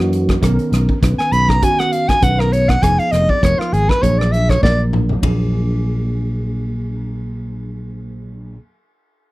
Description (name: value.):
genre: electric jazz fusion.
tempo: 100 BPM.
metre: 4/4.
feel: swing 54% on 16ths.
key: unclear.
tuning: A4 = 440 Hz.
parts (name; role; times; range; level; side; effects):
tine electric piano; accompaniment; 0.0-8.6 s; D#3 to B4; -23 LUFS; right 2 dB; overdrive, ensemble chorus.
sustaining fretless electric bass; bass; 0.0-8.6 s; F1 to Gb2; -18 LUFS; equal; none.
modern studio drum kit; drums; 0.0-5.4 s; hi-hat, kick drum, ride cymbal, rim click, snare drum, toms; -19 LUFS; equal; none.
warm soprano saxophone; melody; 1.2-4.8 s; F4 to B5; -16 LUFS; equal; none.
room: light reverb.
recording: none.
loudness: -14 LUFS.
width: side -19 dB against mid.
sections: 0.0-5.2 A section; 5.2-7.6 B section.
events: soprano saxophone solo 0.0-5.2; drum fill 4.6-5.2.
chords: 0.4 Bmaj9; 2.8 Fm7b5; 4.0 Bbaug7.